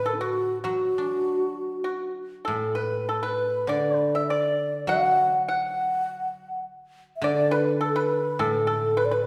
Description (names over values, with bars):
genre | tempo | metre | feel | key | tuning
chinese traditional, Chinese chamber ensemble | 101 BPM | 4/4 | rubato | D gong mode | A4 = 440 Hz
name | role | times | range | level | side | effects
breathy low xiao | melody | 0.0-9.3 s | D4 to F#5 | -27 LUFS | equal | none
pipa | second line | 0.0-9.3 s | F#4 to F#5 | -31 LUFS | equal | none
guzheng | accompaniment | 0.0-9.3 s | A2 to D4 | -32 LUFS | equal | none
room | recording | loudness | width
wet recital hall reverb, RT60 1.5 s | heard from further back in the room | -25 LUFS | mono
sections
0.0-9.3 A section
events
none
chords
none